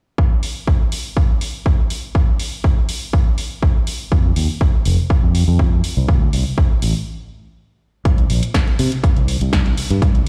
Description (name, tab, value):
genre	filtered disco house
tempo	122 BPM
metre	4/4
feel	straight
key	C dorian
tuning	A4 = 438 Hz
part	electronic kick drum	drums	0.2-10.1 s	none	-18 LUFS	equal	overdrive
part	punchy analog drum machine	drums	0.4-10.2 s	hi-hat, snare drum	-29 LUFS	equal	none
part	fingered electric bass	bass	4.1-10.2 s	F1 to C3	-20 LUFS	equal	sidechain pumping, low-pass filter
room	little or no reverb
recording	played on a big sound system in a bare room, stone room reverb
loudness	-17 LUFS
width	mono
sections	0.2-8.1 A section; 8.1-10.3 B section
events	stop 7.1-8.1; filter sweep on fingered electric bass 8.1-10.3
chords	none